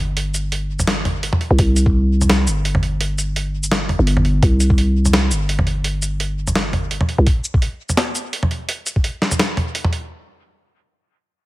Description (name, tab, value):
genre	half-time drum and bass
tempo	169 BPM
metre	4/4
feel	swing 54% on 16ths, half-time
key	unclear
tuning	A4 = 443 Hz
part	growling 808-style bass	bass	0.0-7.3 s	G1 to C2	-17 LUFS	equal	none
part	boom bap sampler-style drum kit	drums	0.2-10.0 s	hi-hat, shaker, snare drum, toms	-19 LUFS	equal	none
part	electronic kick drum	drums	1.6-1.9, 4.4-4.8, 7.3-9.0 s	none	-16 LUFS	equal	none
room	digital ambience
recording	echo-heavy mix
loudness	-16 LUFS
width	side -18 dB against mid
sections	0.0-10.1 A section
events	drop 0.0-10.1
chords	none